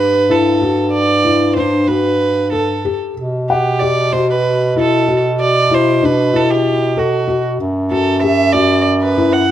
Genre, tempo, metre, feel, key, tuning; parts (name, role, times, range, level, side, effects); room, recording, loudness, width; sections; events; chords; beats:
contemporary instrumental, contemporary; 189 BPM (eighths); 7/8; straight; A4 = 445 Hz
warm violin; melody; 0.0-9.5 s; F#4 to F#5; -17 LUFS; right 3 dB
felt-muted upright piano; arpeggios; 0.0-9.5 s; D4 to F#5; -18 LUFS; left 5 dB
warm bass clarinet; bass; 0.0-9.5 s; F#2 to B2; -16 LUFS; right 1 dB
light reverb; close, detailed microphones; -12 LUFS; side -11 dB against mid
0.0-9.5 A section
0.0 Gmaj7; 3.2 B5; 7.6 F#7(no3)
0.29 0.61 | 0.93 1.24 1.56 1.88 2.20 2.52 2.84 | 3.16 3.48 3.80 4.12 4.44 4.75 5.07 | 5.39 5.70 6.02 6.33 6.65 6.96 7.28 | 7.59 7.91 8.22 8.54 8.86 9.18 9.50